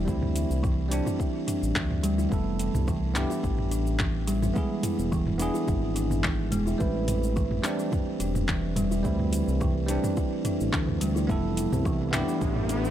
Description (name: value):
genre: organic downtempo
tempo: 107 BPM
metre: 4/4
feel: swing 54% on 16ths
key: unclear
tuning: A4 = 440 Hz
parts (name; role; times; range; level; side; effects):
- bell-like tine electric piano; accompaniment; 0.0-12.9 s; G3 to A4; -33 LUFS; right 3 dB; sidechain pumping, tape echo
- smooth synth bass; bass; 0.0-12.9 s; E1 to D2; -29 LUFS; equal; tube saturation, sidechain pumping
- buzzing kalimba; arpeggios; 0.1-12.8 s; E3 to E4; -29 LUFS; equal; tape echo
- deep house drum kit; drums; 0.1-12.9 s; cabasa, handclaps, hi-hat, toms; -32 LUFS; equal; none
- electronic kick drum; drums; 0.1-12.5 s; none; -30 LUFS; equal; none
- bronze singing bowl; texture; 6.8-12.9 s; B4; -39 LUFS; right 6 dB; stereo widening
- riser; sound effects; 12.0-12.9 s; none; -36 LUFS; right 2 dB; none
room: light reverb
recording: dry, gritty hardware recording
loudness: -24 LUFS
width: side -11 dB against mid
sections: 0.0-12.9 A section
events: riser 12.0-12.9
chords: 0.1 D5; 2.3 Fmaj7; 4.6 E7; 6.8 Amadd9; 9.0 D5; 11.3 Fmaj7